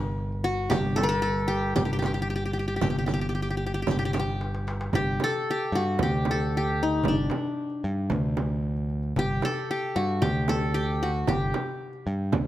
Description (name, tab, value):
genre	Arabic maqam ensemble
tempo	114 BPM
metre	4/4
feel	straight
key	G maqam suznak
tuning	A4 = 439 Hz
part	qanun	melody	0.0-12.5 s	D4 to Bb4+50c	-28 LUFS	left 2 dB	none
part	overdriven picked electric bass	bass	0.0-12.5 s	G1 to G2	-28 LUFS	equal	none
part	darbuka	percussion	0.3-12.4 s	none	-33 LUFS	left 1 dB	none
part	frame drum	percussion	0.7-12.4 s	none	-32 LUFS	right 6 dB	none
part	riq	percussion	0.7-4.7 s	none	-40 LUFS	left 3 dB	none
room	light reverb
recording	close, detailed microphones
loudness	-24 LUFS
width	side -13 dB against mid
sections	0.0-4.9 A section; 4.9-12.5 B section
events	drum fill 4.4-4.9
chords	none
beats	0.18 | 0.71 1.24 1.76 2.29 | 2.82 3.35 3.88 4.40 | 4.93 5.46 5.99 6.52 | 7.05 7.58 8.10 8.63 | 9.16 9.69 10.22 10.75 | 11.27 11.80 12.33